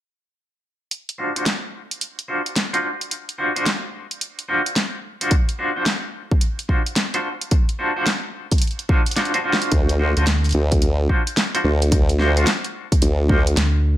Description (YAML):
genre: glitch hop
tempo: 109 BPM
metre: 4/4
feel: swing 64% on 16ths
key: unclear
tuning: A4 = 441 Hz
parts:
  - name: pop drum kit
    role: drums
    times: 0.9-13.7 s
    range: hi-hat, rim click, snare drum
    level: -23 LUFS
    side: equal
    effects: studio reverb
  - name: clean electric guitar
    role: stabs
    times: 1.2-13.4 s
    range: D4 to C5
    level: -23 LUFS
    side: equal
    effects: tremolo, sidechain pumping, low-pass filter, ping-pong delay
  - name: electronic kick drum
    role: drums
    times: 5.3-13.4 s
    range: none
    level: -18 LUFS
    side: equal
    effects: studio reverb
  - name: formant-sweep wobble bass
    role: bass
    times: 9.7-13.6 s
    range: D2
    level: -18 LUFS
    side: equal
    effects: chorus, tube saturation
  - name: rubbery square bass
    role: bass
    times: 10.2-14.0 s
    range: D2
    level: -17 LUFS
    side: equal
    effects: none
room: little or no reverb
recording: none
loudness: -18 LUFS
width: side -13 dB against mid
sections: 0.9-9.7 A section; 9.7-14.0 B section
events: drum fill 9.2-9.7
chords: 0.9 D7#9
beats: | 0.91 1.46 2.01 2.56 | 3.11 3.66 4.21 4.76 | 5.32 5.87 6.42 6.97 | 7.52 8.07 8.62 9.17 | 9.72 10.27 10.82 11.37 | 11.92 12.47 13.02 13.57